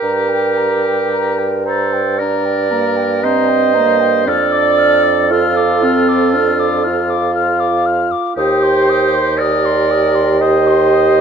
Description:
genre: classical, slow romantic movement for wind quintet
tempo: 58 BPM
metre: 4/4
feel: rubato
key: G minor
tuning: A4 = 440 Hz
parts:
  - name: concert flute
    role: melody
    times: 0.0-11.2 s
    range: G5 to F6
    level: -21 LUFS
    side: left 11 dB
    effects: none
  - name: clear oboe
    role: second line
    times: 0.0-11.2 s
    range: F4 to C5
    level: -21 LUFS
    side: left 4 dB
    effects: none
  - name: mellow clarinet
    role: accompaniment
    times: 0.0-11.2 s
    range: A4 to Eb5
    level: -16 LUFS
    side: right 8 dB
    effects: none
  - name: warm bassoon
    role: bass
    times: 0.0-11.2 s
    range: Eb2 to G2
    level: -18 LUFS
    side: right 2 dB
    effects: none
  - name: warm French horn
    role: accompaniment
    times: 2.2-11.2 s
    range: Bb3 to G4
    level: -17 LUFS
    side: left 1 dB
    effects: none
room: wet large studio reverb, RT60 1.5 s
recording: dark, warm production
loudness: -12 LUFS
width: side -7 dB against mid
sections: 0.0-11.2 A section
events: none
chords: 0.0 Gm; 4.3 Dm/F; 8.4 Cm/Eb

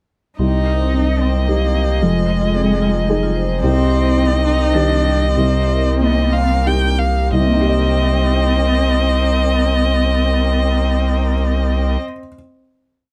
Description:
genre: neoclassical piano and strings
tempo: 87-114 BPM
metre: 3/4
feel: rubato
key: C minor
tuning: A4 = 440 Hz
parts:
  - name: rich violin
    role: melody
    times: 0.4-12.0 s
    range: Eb5 to G5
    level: -23 LUFS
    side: equal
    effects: none
  - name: rich cello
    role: second line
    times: 0.4-12.0 s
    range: Ab3 to Eb4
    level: -24 LUFS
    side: equal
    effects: none
  - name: felt-muted upright piano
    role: accompaniment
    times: 0.4-12.3 s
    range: C2 to Eb5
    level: -23 LUFS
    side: equal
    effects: none
  - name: pedal harmonium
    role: sustained chords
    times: 0.4-12.0 s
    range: Eb3 to Ab4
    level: -33 LUFS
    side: equal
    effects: none
  - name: vibraphone with medium hard mallets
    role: arpeggios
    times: 0.4-7.3 s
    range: C4 to Eb5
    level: -27 LUFS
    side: equal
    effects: slapback echo
  - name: saturated sub bass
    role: bass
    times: 0.4-12.0 s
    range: F1 to C2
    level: -20 LUFS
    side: equal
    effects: none
room: little or no reverb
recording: close, detailed microphones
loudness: -16 LUFS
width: mono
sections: 0.4-7.3 theme; 7.3-11.3 final chord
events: slowing down 2.8-7.3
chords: 0.4 Cm; 2.0 Fm7; 3.6 Cm; 5.4 Cm7

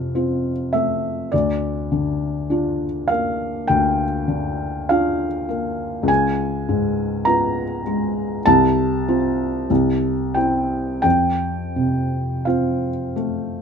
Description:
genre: classical, romantic nocturne for solo piano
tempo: 42-52 BPM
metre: 4/4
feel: rubato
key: F major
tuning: A4 = 440 Hz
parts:
  - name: felt-muted upright piano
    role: solo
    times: 0.0-13.6 s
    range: C2 to Bb5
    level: -18 LUFS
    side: equal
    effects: none
room: light reverb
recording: close, detailed microphones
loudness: -18 LUFS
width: side -6 dB against mid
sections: 0.0-13.6 A section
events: none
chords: 0.0 F; 1.3 Bb/D; 6.1 Db7; 8.5 F/C; 9.7 C; 11.0 F

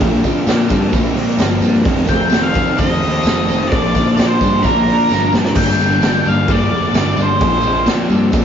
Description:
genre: rock, shoegaze and dream pop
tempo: 130 BPM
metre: 4/4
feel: straight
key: Bb major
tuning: A4 = 440 Hz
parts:
  - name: shimmering ambient pad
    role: sustained chords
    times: 0.0-5.5 s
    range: C4 to Bb5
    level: -26 LUFS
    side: equal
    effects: chorus, built-in reverb
  - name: overdriven semi-hollow guitar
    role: riff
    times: 0.0-8.4 s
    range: F2 to D4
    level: -21 LUFS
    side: right 4 dB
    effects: none
  - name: raw garage guitar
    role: riff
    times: 0.0-8.4 s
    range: F2 to D4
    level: -20 LUFS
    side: left 4 dB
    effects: overdrive
  - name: fuzz picked electric bass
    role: bass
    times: 0.0-8.4 s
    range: F1 to Bb2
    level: -19 LUFS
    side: equal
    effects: overdrive
  - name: raw garage drum kit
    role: drums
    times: 0.0-8.4 s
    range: crash cymbal, hi-hat, kick drum, snare drum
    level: -18 LUFS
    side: right 1 dB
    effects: none
  - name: tambourine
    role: percussion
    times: 0.0-8.4 s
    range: none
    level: -34 LUFS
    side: right 6 dB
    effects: none
  - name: octave-fuzz lead guitar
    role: melody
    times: 2.1-7.8 s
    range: Bb4 to G5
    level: -18 LUFS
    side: equal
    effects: distortion
room: wet stone room reverb, RT60 1.4 s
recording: rough rehearsal-room recording, nothing above 7.5 kHz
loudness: -12 LUFS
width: side -8 dB against mid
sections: 0.0-5.6 A section; 5.6-8.4 B section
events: drum fill 5.1-5.6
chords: 0.0 Bbsus2; 1.9 F7; 3.7 Bb; 5.6 Gm; 7.4 Bbsus2

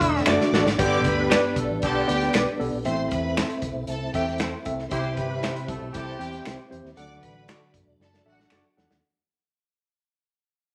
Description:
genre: uptempo 1960s-style soul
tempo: 117 BPM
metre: 4/4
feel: straight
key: G major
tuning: A4 = 440 Hz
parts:
  - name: clear studio string section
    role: second line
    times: 0.0-8.5 s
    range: F#4 to E6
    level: -36 LUFS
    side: equal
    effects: none
  - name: warm horn section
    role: second line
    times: 0.0-6.7 s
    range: D3 to B4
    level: -32 LUFS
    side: equal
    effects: none
  - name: mellow tonewheel organ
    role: sustained chords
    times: 0.0-9.0 s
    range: D3 to E4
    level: -32 LUFS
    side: equal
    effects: chorus vibrato, fast rotary speaker
  - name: vintage muted fingered electric bass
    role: bass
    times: 0.0-9.0 s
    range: E1 to E2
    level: -35 LUFS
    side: equal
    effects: none
  - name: natural country drum kit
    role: drums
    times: 0.0-9.0 s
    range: hi-hat, kick drum, snare drum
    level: -31 LUFS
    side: equal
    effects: none
  - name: mellow tine electric piano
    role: accompaniment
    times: 0.3-9.0 s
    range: G2 to G5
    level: -30 LUFS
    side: equal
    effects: none
  - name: electric guitar through a small old amp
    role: stabs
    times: 0.3-8.6 s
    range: E4 to D5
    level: -30 LUFS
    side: equal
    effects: none
  - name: finger snaps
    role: percussion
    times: 0.3-8.6 s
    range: none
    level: -32 LUFS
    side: equal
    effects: none
room: wet studio reverb, RT60 0.9 s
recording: none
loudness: -24 LUFS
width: mono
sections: 0.8-9.0 A section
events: drum fill 0.3-0.8, 8.0-9.0; fade-out 0.8-9.0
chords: 0.0 D; 0.8 G; 2.9 Am; 4.9 C; 7.0 D

